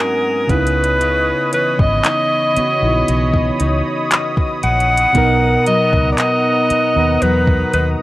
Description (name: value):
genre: contemporary R&B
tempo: 58 BPM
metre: 4/4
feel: straight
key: unclear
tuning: A4 = 443 Hz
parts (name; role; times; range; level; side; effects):
- breathy alto saxophone; melody; 0.0-7.9 s; A#4 to F#5; -16 LUFS; left 1 dB; none
- muted felt-like synth keys; accompaniment; 0.0-8.0 s; G#2 to B4; -20 LUFS; right 2 dB; chorus
- warm analog pad; sustained chords; 0.0-8.0 s; B3 to D#6; -23 LUFS; equal; chorus
- nylon-string guitar; arpeggios; 0.0-8.0 s; G#2 to D#4; -25 LUFS; left 3 dB; none
- vintage muted fingered electric bass; bass; 0.5-7.9 s; G#1 to E2; -19 LUFS; equal; none
- smooth R&B drum kit; drums; 0.5-8.0 s; handclaps, hi-hat, kick drum; -18 LUFS; equal; none
room: little or no reverb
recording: dry, gritty hardware recording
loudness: -13 LUFS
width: side -17 dB against mid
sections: 0.0-8.0 A section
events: none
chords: 0.5 C#m9; 5.2 Bmaj7